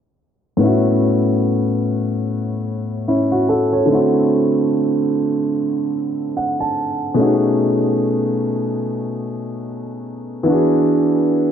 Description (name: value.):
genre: R&B.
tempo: 73 BPM.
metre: 4/4.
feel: swing 58% on 16ths.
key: A major.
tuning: A4 = 437 Hz.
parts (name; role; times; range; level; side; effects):
clear grand piano; solo; 0.6-11.5 s; A2 to A5; -16 LUFS; equal; ping-pong delay.
room: moderate lush hall reverb, RT60 2.4 s.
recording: dark, warm production, low-pass filter.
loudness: -16 LUFS.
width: side -8 dB against mid.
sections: 0.6-11.5 A section.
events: filter sweep 0.6-11.5; grand piano fill 6.0-7.2.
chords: 0.6 A6; 3.9 D7; 7.2 B13; 10.5 E9.